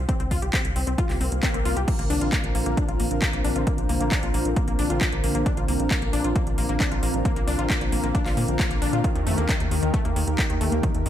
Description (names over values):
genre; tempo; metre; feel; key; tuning
uplifting trance; 134 BPM; 4/4; straight; unclear; A4 = 441 Hz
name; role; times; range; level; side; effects
tight sequencer bass; bass; 0.0-11.1 s; Bb1 to Bb2; -26 LUFS; equal; sidechain pumping
wide unison pluck; arpeggios; 0.1-11.1 s; Eb3 to G4; -30 LUFS; left 3 dB; sidechain pumping, analog delay
electronic kick drum; drums; 0.1-10.9 s; none; -25 LUFS; equal; overdrive
house drum kit; drums; 0.1-11.1 s; crash cymbal, handclaps, hi-hat; -30 LUFS; equal; overdrive, sidechain pumping on hats, sidechain pumping on cymbals
swell; sound effects; 1.1-1.9 s; none; -32 LUFS; left 2 dB; none
lush unison pad; sustained chords; 1.9-11.1 s; D3 to Bb4; -28 LUFS; equal; chorus, sidechain pumping
room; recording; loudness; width
light reverb, digital ambience; none; -21 LUFS; side -11 dB against mid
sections
0.0-11.1 A section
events
swell 1.1-1.9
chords
0.0 C5; 1.9 Bbadd9; 9.0 Eb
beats
| 0.09 0.54 0.98 1.43 | 1.88 2.33 2.77 3.22 | 3.67 4.12 4.57 5.01 | 5.46 5.91 6.36 6.80 | 7.25 7.70 8.15 8.60 | 9.04 9.49 9.94 10.39 | 10.83